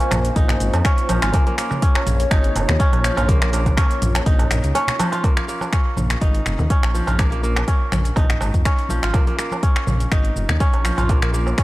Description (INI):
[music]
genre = afro house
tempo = 123 BPM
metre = 4/4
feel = swing 54% on 16ths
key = Bb minor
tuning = A4 = 440 Hz
[part]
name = kalimba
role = melody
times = 0.0-1.6 s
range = Ab5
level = -30 LUFS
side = left 1 dB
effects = tape echo
[part]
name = dark analog pad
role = sustained chords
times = 0.0-5.2 s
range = Bb3 to Db5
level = -28 LUFS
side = left 1 dB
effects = chorus, sidechain pumping
[part]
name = kora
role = arpeggios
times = 0.0-11.6 s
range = F3 to F4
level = -24 LUFS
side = right 1 dB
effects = sidechain pumping, tape echo
[part]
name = deep house drum kit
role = drums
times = 0.0-11.6 s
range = finger snaps, hi-hat, shaker, toms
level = -26 LUFS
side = equal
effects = none
[part]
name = dark detuned saw bass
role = bass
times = 0.1-11.5 s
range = F1 to F2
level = -21 LUFS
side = equal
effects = tube saturation, sidechain pumping
[part]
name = congas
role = percussion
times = 0.1-11.3 s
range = none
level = -29 LUFS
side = left 2 dB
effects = none
[part]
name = darbuka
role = percussion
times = 0.1-11.6 s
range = none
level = -29 LUFS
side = right 3 dB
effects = none
[part]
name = electronic kick drum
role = drums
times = 0.4-11.6 s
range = none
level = -18 LUFS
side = equal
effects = none
[sound]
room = small room ambience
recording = dry, gritty hardware recording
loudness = -16 LUFS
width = side -18 dB against mid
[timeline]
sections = 0.0-5.2 A section; 5.2-11.6 B section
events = drop 0.0-5.2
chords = 0.0 Bbm7